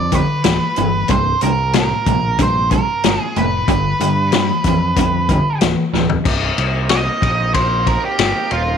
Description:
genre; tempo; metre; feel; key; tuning
blues rock power trio and southern rock; 93 BPM; 4/4; straight; C minor; A4 = 441 Hz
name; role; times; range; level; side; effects
octave-fuzz lead guitar; melody; 0.0-8.8 s; F4 to Eb5; -19 LUFS; right 2 dB; distortion, slapback echo
raw garage guitar; riff; 0.0-6.2 s; C2 to E3; -18 LUFS; equal; overdrive, tremolo
growling fingered electric bass; bass; 0.0-8.8 s; C1 to G2; -21 LUFS; right 1 dB; overdrive
vintage drum kit; drums; 0.1-8.7 s; crash cymbal, hi-hat, kick drum, ride cymbal, snare drum, toms; -19 LUFS; left 5 dB; none
overdriven tonewheel organ; sustained chords; 6.3-8.8 s; Bb3 to Bb4; -26 LUFS; right 12 dB; slow rotary speaker
room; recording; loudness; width
light reverb, small room ambience; 1960s-style stereo; -14 LUFS; side -7 dB against mid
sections
0.0-6.3 A section; 6.3-8.8 B section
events
drum fill 5.9-6.3; lead electric guitar solo 6.3-8.8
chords
0.0 G7; 1.1 C5; 3.7 G7; 6.3 Cm7

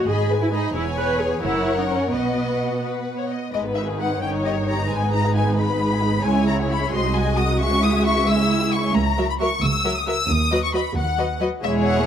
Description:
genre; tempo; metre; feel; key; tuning
quick classical-period movement for string orchestra; 89 BPM (dotted quarters); 6/8; straight; B major, G# minor from 3.5 s, B major from 9.0 s; A4 = 439 Hz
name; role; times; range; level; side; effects
rich chamber violin section; melody; 0.0-12.1 s; D#5 to E6; -25 LUFS; left 4 dB; none
warm studio violin section; second line; 0.0-12.1 s; G#3 to E5; -26 LUFS; left 3 dB; none
warm studio viola section; accompaniment; 0.0-12.1 s; D#3 to B4; -24 LUFS; right 2 dB; none
warm symphonic cello section; bass; 0.0-12.1 s; B#1 to B2; -26 LUFS; right 3 dB; none
warm studio double bass section; bass; 0.1-12.1 s; E1 to D#2; -26 LUFS; right 2 dB; none
room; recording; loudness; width
moderate concert hall reverb, RT60 1.7 s; close, detailed microphones; -19 LUFS; side -9 dB against mid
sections
0.0-3.5 A section; 3.5-12.1 B section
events
none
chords
0.1 G#m; 0.7 C#m7/E; 1.4 F#7; 2.1 B; 3.5 G#m; 4.2 D#7/G; 4.9 G#m; 6.3 C#m; 6.9 G#7/B#; 7.6 C#m; 9.0 F#7/C#; 10.3 B/D#

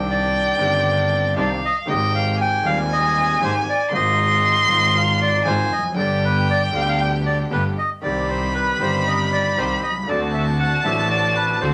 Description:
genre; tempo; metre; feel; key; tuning
tango; 117 BPM; 4/4; rubato; C harmonic minor; A4 = 438 Hz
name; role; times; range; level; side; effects
rich violin; second line; 0.0-11.7 s; F5 to C6; -25 LUFS; equal; none
warm concert grand piano; accompaniment; 0.0-11.7 s; Eb1 to G4; -28 LUFS; equal; none
warm studio string section; stabs; 0.0-11.7 s; G3 to G4; -34 LUFS; equal; none
dark double bass; bass; 0.0-11.7 s; F1 to Eb2; -26 LUFS; equal; none
bandoneon; melody; 0.1-11.7 s; B4 to G5; -24 LUFS; equal; none
room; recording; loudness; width
moderate studio reverb, RT60 0.6 s; none; -19 LUFS; mono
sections
0.0-11.7 A section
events
none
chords
0.0 Cmadd9; 1.9 Abmaj7; 3.9 Fm7/Ab; 6.0 G; 8.0 Cm; 10.1 D7

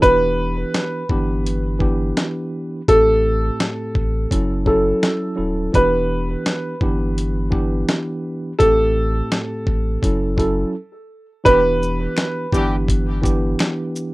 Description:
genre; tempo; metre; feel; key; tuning
hip hop, boom-bap hip-hop; 84 BPM; 4/4; swing 58% on 16ths; E minor; A4 = 439 Hz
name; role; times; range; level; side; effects
dark upright piano; melody; 0.0-13.0 s; A4 to B4; -18 LUFS; right 1 dB; high-pass filter, low-pass filter
mellow tine electric piano; accompaniment; 0.0-14.1 s; A2 to A4; -23 LUFS; right 1 dB; medium stereo tremolo, high-pass filter, low-pass filter
warm sub bass; bass; 0.0-13.6 s; D#1 to A1; -22 LUFS; equal; none
dusty soul sampler-style drum kit; drums; 0.0-14.1 s; hi-hat, kick drum, shaker, snare drum; -20 LUFS; equal; none
warm horn section; stabs; 11.5-12.8 s; E3 to G4; -27 LUFS; left 1 dB; high-pass filter, low-pass filter, digital delay
finger snaps; percussion; 12.2-13.8 s; none; -31 LUFS; left 2 dB; none
room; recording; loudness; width
little or no reverb; rough home demo mix; -17 LUFS; side -20 dB against mid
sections
0.0-11.5 A section; 11.5-14.1 B section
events
break 10.7-11.5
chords
0.0 Em7; 2.9 Am7; 4.3 F#m7; 5.7 Em7; 8.6 Am7; 10.0 F#m7; 11.5 Em7

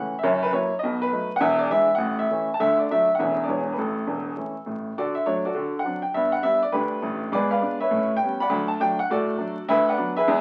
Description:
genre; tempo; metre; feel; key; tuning
jazz, stride piano; 203 BPM; 4/4; swing 62% on 8ths; A major, D major from 5.0 s; A4 = 439 Hz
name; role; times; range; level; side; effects
clear upright piano; solo; 0.0-10.4 s; E1 to B5; -24 LUFS; equal; none
room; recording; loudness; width
wet studio reverb, RT60 0.7 s; very old 78 rpm record, vinyl crackle; -24 LUFS; mono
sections
0.0-5.0 A section; 5.0-10.4 B section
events
none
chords
0.2 F#7; 0.8 B7; 1.4 E7; 2.0 A; 2.6 D; 3.2 A/E; 3.5 E7; 3.8 A; 5.0 D; 5.6 D7; 6.1 G; 7.3 G#dim7; 7.9 A9; 8.5 D; 9.7 Bm/D

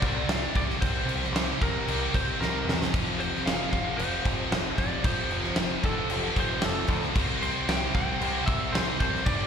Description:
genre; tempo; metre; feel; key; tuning
hard rock; 114 BPM; 4/4; straight; unclear; A4 = 440 Hz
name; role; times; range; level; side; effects
lightly driven lead guitar; melody; 0.0-9.5 s; A4 to G5; -33 LUFS; equal; slapback echo
heavy high-gain guitar; riff; 0.0-9.5 s; F2 to C4; -34 LUFS; right 14 dB; distortion, slapback echo
scooped high-gain guitar; riff; 0.0-9.5 s; F2 to C4; -34 LUFS; left 14 dB; distortion, slapback echo
growling picked electric bass; bass; 0.0-9.5 s; F1 to E2; -33 LUFS; equal; overdrive
big rock drum kit; drums; 0.0-9.4 s; crash cymbal, kick drum, snare drum; -28 LUFS; equal; none
high-gain distorted guitar; riff; 2.9-9.5 s; F2 to C4; -37 LUFS; left 1 dB; none
room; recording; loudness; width
little or no reverb; live gig heard through the venue's PA, recital hall reverb; -24 LUFS; side -7 dB against mid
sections
0.0-9.5 A section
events
drum fill 2.4-2.9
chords
0.0 C5; 2.9 F; 7.2 C5

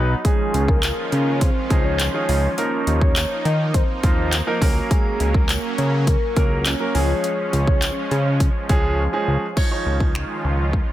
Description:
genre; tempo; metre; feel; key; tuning
dance-pop; 103 BPM; 4/4; straight; Db major; A4 = 440 Hz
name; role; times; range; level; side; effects
clear concert grand piano; accompaniment; 0.0-10.6 s; F3 to Db5; -25 LUFS; right 2 dB; sidechain pumping
filtered supersaw swell; sustained chords; 0.0-10.9 s; Eb3 to F4; -28 LUFS; right 1 dB; sidechain pumping
fat analog bass; bass; 0.0-10.8 s; Cb2 to Eb3; -21 LUFS; equal; sidechain pumping
soft octave-layered synth lead; melody; 0.2-8.9 s; Ab4 to Eb5; -26 LUFS; left 1 dB; chorus, phaser
house drum kit; drums; 0.2-10.9 s; crash cymbal, finger snaps, handclaps, hi-hat, kick drum; -20 LUFS; equal; none
tambourine; percussion; 0.8-8.0 s; none; -34 LUFS; left 11 dB; none
room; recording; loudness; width
little or no reverb; none; -17 LUFS; side -14 dB against mid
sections
0.0-9.6 A section; 9.6-10.9 B section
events
break 0.0, 9.0-9.6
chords
0.2 Dbadd9; 2.6 Ebsus2; 4.6 Gb/Db; 6.9 Db; 9.6 Dbadd9

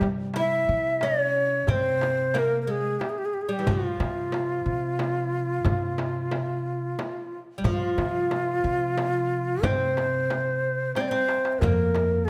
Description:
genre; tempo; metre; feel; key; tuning
Arabic maqam ensemble; 90 BPM; 3/4; straight; C maqam hijaz; A4 = 440 Hz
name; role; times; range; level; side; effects
breathy bright ney; melody; 0.0-12.3 s; F4 to E5; -28 LUFS; equal; none
oud; second line; 0.0-12.3 s; E3 to E4; -35 LUFS; equal; none
upright bass; bass; 0.0-12.3 s; F2 to C3; -32 LUFS; equal; none
darbuka; percussion; 0.0-12.2 s; none; -35 LUFS; equal; none
frame drum; percussion; 0.0-12.1 s; none; -36 LUFS; equal; none
room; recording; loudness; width
moderate recital hall reverb, RT60 1.5 s; none; -26 LUFS; mono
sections
0.0-11.6 A section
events
drum fill 11.0-11.6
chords
none

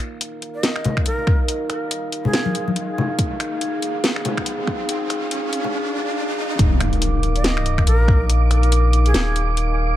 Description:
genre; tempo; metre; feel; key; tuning
deep dubstep; 141 BPM; 4/4; swing 58% on 16ths, half-time; unclear; A4 = 440 Hz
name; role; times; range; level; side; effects
dark analog pad; sustained chords; 0.0-10.0 s; Eb4 to F5; -26 LUFS; equal; chorus
garage drum kit; drums; 0.0-9.7 s; finger snaps, hi-hat, snare drum; -23 LUFS; equal; none
riser and impact; sound effects; 1.6-8.3 s; none; -27 LUFS; equal; none
bright reedy shakuhachi; melody; 0.5-2.7, 7.4-9.5 s; Ab4 to Eb5; -29 LUFS; equal; dub echo
congas; percussion; 0.9-5.7 s; none; -25 LUFS; left 3 dB; dub echo
electronic kick drum; drums; 1.0-8.2 s; none; -19 LUFS; equal; none
soft dub sub bass; bass; 6.6-10.0 s; Eb1 to Bb1; -18 LUFS; equal; none
wind-like tuned noise texture; texture; 6.9-10.0 s; D6; -28 LUFS; right 8 dB; built-in reverb
room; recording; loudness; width
light reverb; echo-heavy mix, high-pass filter; -18 LUFS; side -13 dB against mid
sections
0.0-6.6 A section; 6.6-10.0 B section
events
build-up 0.0-6.6; riser 1.6-6.6; drop 6.6-10.0; impact 6.6-8.3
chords
0.0 Eb5

